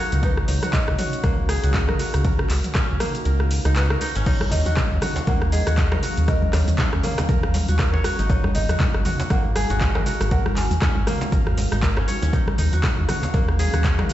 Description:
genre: afro house.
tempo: 119 BPM.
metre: 4/4.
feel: swing 58% on 16ths.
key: Eb minor.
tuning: A4 = 440 Hz.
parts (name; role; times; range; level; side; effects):
marimba with soft mallets; melody; 0.0-11.3 s; Bb4 to Ab5; -32 LUFS; equal; ping-pong delay.
ethereal airy pad; sustained chords; 0.0-14.1 s; Eb3 to F5; -32 LUFS; right 1 dB; ensemble chorus, built-in reverb, sidechain pumping.
kora; arpeggios; 0.0-14.1 s; Bb3 to Eb5; -28 LUFS; equal; sidechain pumping, ping-pong delay.
round analog bass; bass; 0.1-14.1 s; Ab1 to Eb2; -22 LUFS; equal; tube saturation, sidechain pumping.
deep house drum kit; drums; 0.1-14.1 s; crash cymbal, handclaps, hi-hat, rim click, shaker, toms; -27 LUFS; equal; overdrive.
electronic kick drum; drums; 0.2-14.0 s; none; -22 LUFS; equal; overdrive.
djembe; percussion; 4.3-14.1 s; none; -28 LUFS; right 1 dB; none.
congas; percussion; 4.4-14.1 s; none; -31 LUFS; left 1 dB; none.
room: studio reverb.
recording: played on a big sound system in a bare room, stone room reverb, nothing above 7.9 kHz.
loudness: -18 LUFS.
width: side -13 dB against mid.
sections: 0.0-14.1 A section.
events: kick drops out 3.3-4.3.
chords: 0.2 Dbsus4; 4.3 Ebm9; 8.3 Ab5; 12.3 Ebm9.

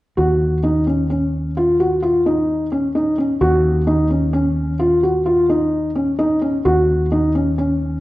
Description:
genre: contemporary instrumental, chamber music in an uneven meter.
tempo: 130 BPM.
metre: 7/4.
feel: straight.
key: Eb minor.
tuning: A4 = 440 Hz.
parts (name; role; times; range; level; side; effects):
felt-muted upright piano; arpeggios; 0.2-8.0 s; Db4 to Gb4; -16 LUFS; equal; none.
fretless electric bass; bass; 0.2-8.0 s; Eb2; -21 LUFS; equal; none.
room: wet recital hall reverb, RT60 1.4 s.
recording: worn, warbling old tape, cassette tape, warbly pitch drift.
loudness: -15 LUFS.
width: side -17 dB against mid.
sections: 0.2-8.0 A section.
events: none.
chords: 0.2 Ebm7.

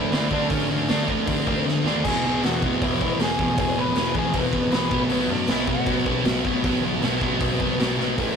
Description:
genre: punk rock.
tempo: 156 BPM.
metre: 4/4.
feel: straight.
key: unclear.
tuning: A4 = 443 Hz.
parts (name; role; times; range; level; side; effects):
overdriven semi-hollow guitar; melody; 0.0-7.8 s; B3 to B5; -29 LUFS; left 2 dB; none.
sludgy distorted guitar; riff; 0.0-8.4 s; E2 to D4; -22 LUFS; equal; overdrive.
growling picked electric bass; bass; 0.0-8.3 s; E1 to B2; -31 LUFS; equal; overdrive.
raw garage drum kit; drums; 0.1-8.3 s; crash cymbal, hi-hat, kick drum, snare drum, splash cymbal; -25 LUFS; equal; none.
room: moderate booth ambience, RT60 0.2 s.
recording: rough rehearsal-room recording, tube saturation.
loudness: -20 LUFS.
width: side -6 dB against mid.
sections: 0.0-8.2 A section.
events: drum fill 1.7-2.0, 8.0.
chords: 0.0 D5; 2.0 E; 4.9 B5.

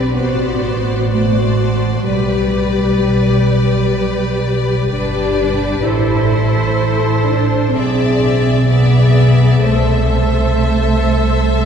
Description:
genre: classical, slow romantic movement for string orchestra.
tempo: 63 BPM.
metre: 4/4.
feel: rubato.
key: G major.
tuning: A4 = 440 Hz.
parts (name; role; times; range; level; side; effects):
clear chamber violin section; melody; 0.0-11.7 s; C5 to E5; -24 LUFS; left 4 dB; none.
clear chamber violin section; second line; 0.0-11.7 s; B4 to D5; -23 LUFS; left 2 dB; none.
rich symphonic viola section; accompaniment; 0.0-11.7 s; F#4 to A4; -20 LUFS; left 3 dB; none.
rich chamber cello section; bass; 0.0-11.7 s; G3 to E4; -19 LUFS; right 2 dB; none.
rich chamber double bass section; bass; 0.0-11.7 s; G1 to C2; -15 LUFS; right 1 dB; none.
room: wet cathedral reverb, RT60 4.0 s.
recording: heard from further back in the room.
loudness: -12 LUFS.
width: side -7 dB against mid.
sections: 0.0-11.7 A section.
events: none.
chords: 0.2 D7/A; 2.1 G/B; 5.9 Am; 7.8 E7/B; 9.6 Am/C.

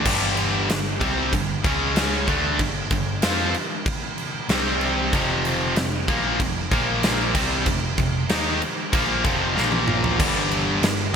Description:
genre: hard rock.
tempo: 95 BPM.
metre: 4/4.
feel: straight.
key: G minor.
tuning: A4 = 440 Hz.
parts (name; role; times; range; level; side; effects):
distorted electric guitar; riff; 0.0-11.1 s; F2 to F4; -25 LUFS; left 9 dB; overdrive.
distorted electric guitar; riff; 0.0-11.2 s; F2 to F4; -26 LUFS; right 10 dB; overdrive.
overdriven picked electric bass; bass; 0.0-11.1 s; F1 to F2; -28 LUFS; equal; none.
huge arena drum kit; drums; 0.1-11.0 s; crash cymbal, kick drum, snare drum, toms; -24 LUFS; equal; gated reverb.
room: moderate lush hall reverb, RT60 1.9 s, small room ambience.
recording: bright 1980s-style digital production.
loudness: -20 LUFS.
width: side -7 dB against mid.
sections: 0.1-10.2 A section.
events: drum fill 9.6-10.2.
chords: 0.1 G5; 1.6 C#5; 2.3 G5; 4.5 C5; 5.1 F5; 6.7 Bb5; 7.3 F5; 9.6 Bb5; 10.2 G5.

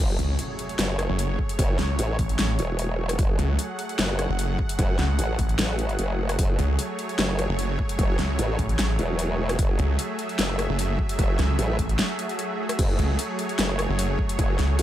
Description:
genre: heavy wobble dubstep.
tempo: 150 BPM.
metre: 4/4.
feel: half-time.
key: F# minor.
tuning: A4 = 441 Hz.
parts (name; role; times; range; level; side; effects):
supersaw pad; sustained chords; 0.0-14.8 s; F#3 to F#5; -30 LUFS; right 1 dB; sidechain pumping.
formant-sweep wobble bass; bass; 0.0-14.8 s; E1 to A1; -25 LUFS; equal; chorus, overdrive.
impact and swell; sound effects; 0.0-1.6, 12.2-12.8 s; none; -36 LUFS; equal; none.
snarling distorted saw bass; bass; 0.2-14.8 s; F#1 to C#2; -24 LUFS; equal; overdrive.
dubstep drum kit; drums; 0.2-14.8 s; crash cymbal, hi-hat, rim click, snare drum; -29 LUFS; left 1 dB; studio ambience.
electronic kick drum; drums; 1.4-14.5 s; none; -25 LUFS; equal; studio ambience.
room: little or no reverb.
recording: none.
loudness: -22 LUFS.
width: side -12 dB against mid.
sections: 0.0-14.8 A section.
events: drop 0.0-14.8; impact 0.0-1.6; break 12.0-12.8; swell 12.2-12.8.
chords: 0.0 F#madd9.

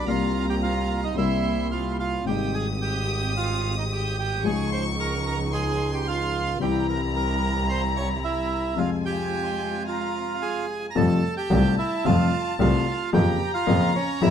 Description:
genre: tango.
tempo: 110 BPM.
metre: 4/4.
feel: rubato.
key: F minor, F major from 11.0 s.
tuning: A4 = 442 Hz.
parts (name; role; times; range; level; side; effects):
bandoneon; melody; 0.0-14.3 s; Db4 to Db6; -28 LUFS; right 6 dB; none.
warm chamber violin section; second line; 0.0-14.3 s; Ab5 to Eb6; -32 LUFS; left 4 dB; none.
warm upright piano; accompaniment; 0.1-14.3 s; Ab1 to F4; -27 LUFS; left 6 dB; none.
muted studio string section; stabs; 0.1-10.9 s; F3 to G4; -35 LUFS; right 2 dB; none.
clear double bass; bass; 0.1-14.3 s; Ab1 to F2; -26 LUFS; right 2 dB; none.
room: moderate large studio reverb, RT60 1.2 s.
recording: dark, warm production.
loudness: -22 LUFS.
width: side -8 dB against mid.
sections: 0.0-11.0 A section; 11.0-14.3 B section.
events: break 8.8-11.0.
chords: 0.1 C7sus4; 1.2 C7; 2.3 Abmaj7; 4.4 Dbadd9; 6.6 C; 8.8 Fm; 11.0 Fadd9; 13.1 Bbm/F.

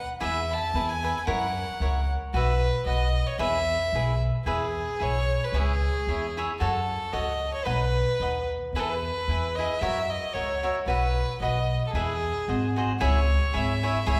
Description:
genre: mexican folk, mariachi.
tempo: 112 BPM.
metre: 2/4.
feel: swing 55% on 8ths.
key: E major.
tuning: A4 = 440 Hz.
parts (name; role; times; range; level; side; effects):
bright violin; melody; 0.0-14.2 s; G#4 to B5; -31 LUFS; equal; none.
upright bass; bass; 0.0-14.2 s; G#1 to F#2; -30 LUFS; equal; none.
cavaquinho; accompaniment; 0.2-14.2 s; D#4 to F#5; -33 LUFS; equal; none.
room: wet recital hall reverb, RT60 1.9 s.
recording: heard from further back in the room.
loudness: -27 LUFS.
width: mono.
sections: 0.0-4.5 A section; 4.5-13.0 A section; 13.0-14.2 B section.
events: none.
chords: 0.2 E; 1.3 F#7; 2.3 Bsus4; 2.9 B; 3.4 E; 5.5 C#m; 6.6 F#m; 7.7 B; 8.7 E; 9.8 F#7; 10.9 Bsus4; 11.4 B; 11.9 E; 12.5 G#7; 13.0 C#m.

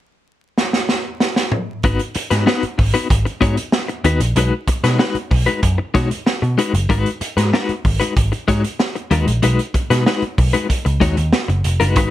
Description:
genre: funk.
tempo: 95 BPM.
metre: 4/4.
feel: straight.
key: G# minor.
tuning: A4 = 442 Hz.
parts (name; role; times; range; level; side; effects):
vintage drum kit; drums; 0.6-12.1 s; hi-hat, kick drum, snare drum, toms; -19 LUFS; right 1 dB; none.
clean electric guitar; accompaniment; 1.8-12.1 s; G#3 to C#5; -19 LUFS; left 5 dB; tremolo.
vintage muted picked electric bass; bass; 1.8-12.1 s; E#1 to B2; -17 LUFS; equal; none.
room: light reverb.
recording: vinyl crackle.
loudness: -15 LUFS.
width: side -13 dB against mid.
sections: 0.0-1.8 A section; 1.8-12.1 B section.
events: drum fill 0.6-1.8.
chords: 0.0 N.C.; 1.8 G#m7; 4.4 B6; 6.9 G#m7; 9.4 B6.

